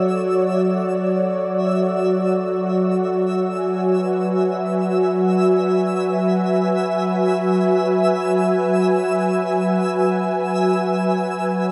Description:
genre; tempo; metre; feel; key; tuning
ambient; free time; none; none; unclear; A4 = 440 Hz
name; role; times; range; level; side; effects
warm analog pad; sustained chords; 0.0-11.7 s; F#3 to G#5; -20 LUFS; equal; chorus
twinkling granular texture; texture; 0.0-11.7 s; E5 to E6; -31 LUFS; equal; built-in reverb
room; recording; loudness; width
wet lush hall reverb, RT60 2.8 s; dark, warm production, nothing above 11.0 kHz; -19 LUFS; mono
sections
0.0-11.7 A section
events
none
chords
0.0 Dmaj9/F#; 3.4 Eadd9/F#; 10.0 F#9sus4

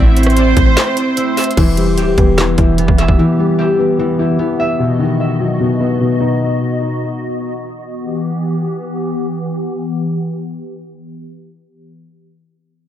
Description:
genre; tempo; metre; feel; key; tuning
hip hop, trap; 149 BPM; 4/4; half-time; E minor; A4 = 440 Hz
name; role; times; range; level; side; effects
hollow soft pad; sustained chords; 0.0-12.0 s; E3 to D#5; -22 LUFS; equal; ensemble chorus
concert harp; arpeggios; 0.0-7.5 s; E3 to E5; -18 LUFS; equal; tape echo
warm 808-style bass; bass; 0.0-3.2 s; D1 to A1; -14 LUFS; equal; none
warm studio violin section; second line; 0.2-1.5 s; C5; -21 LUFS; right 1 dB; tape echo
trap drum kit; drums; 0.2-3.2 s; crash cymbal, handclaps, hi-hat, kick drum, rim click, snare drum; -16 LUFS; equal; tape echo
dark concert grand piano; accompaniment; 1.6-7.2 s; B2 to E5; -16 LUFS; left 2 dB; tape echo
room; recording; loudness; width
small room ambience; echo-heavy mix, low-pass filter; -13 LUFS; side -11 dB against mid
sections
0.0-1.6 A section; 1.6-8.0 B section; 8.0-11.2 C section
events
break 0.8-1.6; filter sweep 1.6-8.0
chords
0.0 Am; 1.6 Em; 4.8 B; 8.0 Em

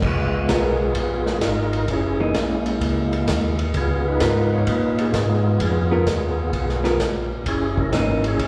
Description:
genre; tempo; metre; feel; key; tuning
soul jazz organ trio; 129 BPM; 4/4; swing 68% on 8ths; Db mixolydian; A4 = 440 Hz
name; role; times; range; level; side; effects
mellow tonewheel organ; bass; 0.0-8.5 s; Gb1 to Bb2; -26 LUFS; equal; slow rotary speaker
vintage drum kit; drums; 0.0-8.5 s; crash cymbal, hi-hat, kick drum, ride cymbal, snare drum; -28 LUFS; equal; none
percussive tonewheel organ; melody; 0.1-8.5 s; Ab3 to Db5; -26 LUFS; equal; slow rotary speaker, overdrive, chorus vibrato, slapback echo
vintage hollow-body jazz guitar; accompaniment; 0.5-8.2 s; Fb3 to Bb4; -27 LUFS; equal; slapback echo
room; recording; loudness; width
light reverb, studio reverb; live gig heard through the venue's PA, recital hall reverb; -21 LUFS; mono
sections
0.0-8.5 A section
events
none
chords
0.0 Db13; 1.9 Gb13; 3.7 Db13; 7.5 Gb13

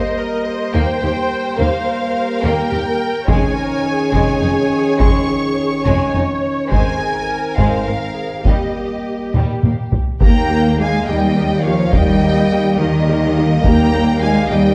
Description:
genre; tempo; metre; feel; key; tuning
cinematic, epic orchestral film score; 70 BPM (dotted quarters); 6/8; straight; Eb mixolydian; A4 = 440 Hz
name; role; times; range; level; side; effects
warm symphonic violin section; melody; 0.0-14.7 s; Eb5 to Db6; -26 LUFS; equal; none
warm symphonic violin section; second line; 0.0-14.7 s; G3 to G5; -26 LUFS; equal; none
warm symphonic viola section; accompaniment; 0.0-14.6 s; Bb3 to Db5; -27 LUFS; equal; none
dark French horn section; sustained chords; 0.0-14.7 s; Eb3 to Db4; -23 LUFS; equal; none
warm symphonic cello section; bass; 0.7-14.7 s; Eb2 to Bb3; -23 LUFS; equal; none
warm symphonic double bass section; bass; 0.7-14.7 s; F1 to Eb2; -24 LUFS; equal; none
taiko ensemble; drums; 3.3-14.2 s; none; -20 LUFS; equal; none
bright trombone section; sustained chords; 10.2-14.7 s; G3 to Bb3; -26 LUFS; equal; none
mellow tuba; bass; 10.2-14.7 s; Eb2; -24 LUFS; equal; none
room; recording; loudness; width
moderate scoring stage reverb, RT60 1.8 s; dark, warm production; -16 LUFS; mono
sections
0.0-10.2 A section; 10.2-14.7 B section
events
drum fill 9.3-10.2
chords
0.0 Eb; 3.3 Dbadd9/F; 6.7 Abadd9; 8.5 Eb

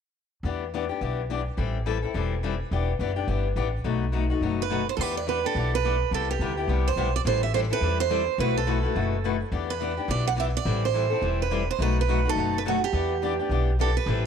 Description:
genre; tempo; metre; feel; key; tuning
acoustic string swing (jazz manouche); 211 BPM; 4/4; swing 59% on 8ths; E minor; A4 = 440 Hz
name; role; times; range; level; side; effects
picked steel-string acoustic guitar; accompaniment; 0.4-14.3 s; B2 to B4; -29 LUFS; left 10 dB; none
upright bass; bass; 0.4-14.3 s; E1 to E2; -27 LUFS; equal; none
picked steel-string acoustic guitar; melody; 4.6-14.2 s; F#4 to F#5; -27 LUFS; right 12 dB; slapback echo
room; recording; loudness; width
light reverb; 1960s-style stereo with parts hard left and right; -23 LUFS; side -7 dB against mid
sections
0.4-5.0 A section; 5.0-14.1 B section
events
none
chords
0.4 Em7; 1.6 Am7; 2.7 Em9; 3.9 B7; 5.0 Em7; 6.1 Cmaj7; 7.3 Am7; 8.4 B7sus4; 9.5 Em7; 10.7 Am7; 11.8 B7; 12.9 Em7

